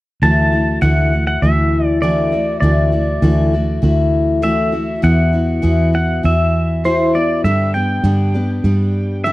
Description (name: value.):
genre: acoustic folk duo or small band.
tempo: 100 BPM.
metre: 4/4.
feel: straight.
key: D major.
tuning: A4 = 441 Hz.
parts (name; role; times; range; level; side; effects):
pedal steel guitar; melody; 0.2-9.3 s; C5 to A5; -20 LUFS; right 1 dB; none.
picked steel-string acoustic guitar; accompaniment; 0.2-9.3 s; G2 to G4; -17 LUFS; left 2 dB; none.
fingered electric bass; bass; 0.2-9.3 s; D2 to G2; -16 LUFS; equal; none.
room: small room ambience.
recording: dry, close 1970s-style studio recording.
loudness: -13 LUFS.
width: side -18 dB against mid.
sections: 0.2-9.3 A section.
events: none.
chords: 0.2 Dadd9; 5.0 Esus2; 7.4 G.